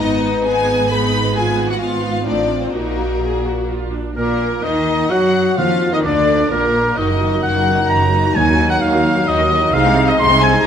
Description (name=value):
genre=classical, dramatic, fast romantic movement for symphony orchestra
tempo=130 BPM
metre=3/4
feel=straight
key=Eb minor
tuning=A4 = 444 Hz
part: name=warm symphonic violin section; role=melody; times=0.0-10.7 s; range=Gb4 to Cb6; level=-25 LUFS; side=left 3 dB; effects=none
part: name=warm symphonic violin section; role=second line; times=0.0-10.7 s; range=Bb3 to C6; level=-23 LUFS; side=left 4 dB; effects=none
part: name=rich symphonic viola section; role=accompaniment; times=0.0-10.7 s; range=Eb3 to Ab4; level=-24 LUFS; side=right 1 dB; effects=none
part: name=dark French horn section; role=sustained chords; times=0.0-10.7 s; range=Gb3 to Cb5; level=-22 LUFS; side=left 3 dB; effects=none
part: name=rich symphonic cello section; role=bass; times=0.0-10.6 s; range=Eb2 to Gb3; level=-23 LUFS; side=right 3 dB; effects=none
part: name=rich symphonic double bass section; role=bass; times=0.0-10.6 s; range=Gb1 to Gb2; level=-23 LUFS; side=right 4 dB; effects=none
part: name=hollow small flute group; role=second line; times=4.2-10.7 s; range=Bb4 to C6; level=-23 LUFS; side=left 2 dB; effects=none
part: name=warm clarinet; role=second line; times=4.2-10.7 s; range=Bb3 to Gb4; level=-25 LUFS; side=equal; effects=none
part: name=warm oboe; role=second line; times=4.2-10.6 s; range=Bb4 to C6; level=-19 LUFS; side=right 1 dB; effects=none
part: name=mellow bassoon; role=accompaniment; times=4.2-10.7 s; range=Bb2 to Bb3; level=-24 LUFS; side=right 1 dB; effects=none
part: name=timpani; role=percussion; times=5.6-6.2, 8.4-9.0 s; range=Eb3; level=-25 LUFS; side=right 1 dB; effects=none
room=moderate scoring stage reverb, RT60 1.9 s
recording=none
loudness=-14 LUFS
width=side -8 dB against mid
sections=0.0-4.2 A section; 4.2-10.7 B section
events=none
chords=0.0 Abm; 1.4 Fdim/Ab; 2.3 Adim; 2.7 Ebm/Bb; 3.7 Bb; 4.2 Ebm/Bb; 5.6 Bb; 7.0 Ebm/Gb; 8.4 Ebm; 9.7 Ab/C